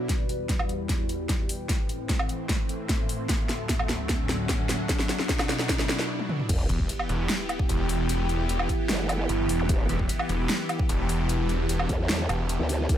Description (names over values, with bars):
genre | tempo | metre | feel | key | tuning
heavy wobble dubstep | 150 BPM | 4/4 | half-time | E minor | A4 = 440 Hz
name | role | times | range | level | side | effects
supersaw pad | sustained chords | 0.0-13.0 s | D2 to G4 | -32 LUFS | equal | phaser, sidechain pumping, low-pass filter
swell, riser, sub drop and zap | sound effects | 0.0-9.7 s | none | -37 LUFS | equal | none
warbly tape-like pad | texture | 0.0-13.0 s | B3 to C6 | -35 LUFS | right 1 dB | chorus, built-in reverb, phaser, sidechain pumping
dubstep drum kit | drums | 0.1-13.0 s | crash cymbal, hi-hat, snare drum, toms, woodblock | -29 LUFS | equal | studio reverb
electronic kick drum | drums | 0.1-13.0 s | none | -27 LUFS | equal | studio reverb
growl bass | bass | 6.5-13.0 s | E1 to E2 | -28 LUFS | equal | chorus, overdrive
snarling distorted saw bass | bass | 6.7-12.6 s | E1 to G1 | -27 LUFS | equal | distortion, overdrive
room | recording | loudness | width
light reverb | none | -24 LUFS | side -11 dB against mid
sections
0.1-6.5 A section; 6.5-13.0 B section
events
build-up 0.1-6.5; drum fill 0.1-6.1, 6.2-6.5; riser 0.1-6.1; filter sweep on supersaw synth 0.1-6.5; break 6.1-6.5; drop 6.5-13.0; impact 6.5-8.1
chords
0.1 Em; 1.7 Am; 3.3 D; 4.9 Bm; 6.5 Em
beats
| 0.09 0.49 0.89 1.29 | 1.69 2.09 2.49 2.89 | 3.29 3.69 4.09 4.49 | 4.89 5.29 5.69 6.09 | 6.49 6.89 7.29 7.69 | 8.09 8.49 8.89 9.29 | 9.69 10.09 10.49 10.89 | 11.29 11.69 12.09 12.49 | 12.89